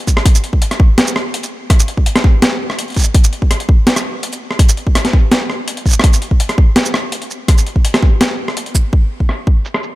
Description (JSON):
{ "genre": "drum and bass", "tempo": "166 BPM", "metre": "4/4", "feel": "half-time", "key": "none", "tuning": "none", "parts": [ { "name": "boom bap sampler-style drum kit", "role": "drums", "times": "0.1-9.9 s", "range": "hi-hat, rim click, shaker, snare drum", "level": "-16 LUFS", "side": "equal", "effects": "overdrive, low-pass filter on perc, low-pass filter on hats, low-pass filter on snare, low-pass filter on room" }, { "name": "electronic kick drum", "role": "drums", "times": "0.1-9.5 s", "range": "none", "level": "-10 LUFS", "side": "equal", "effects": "none" } ], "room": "little or no reverb", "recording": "none", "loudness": "-11 LUFS", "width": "side -18 dB against mid", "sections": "0.0-8.9 A section; 8.9-10.0 B section", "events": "drop 0.0-8.9", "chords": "none" }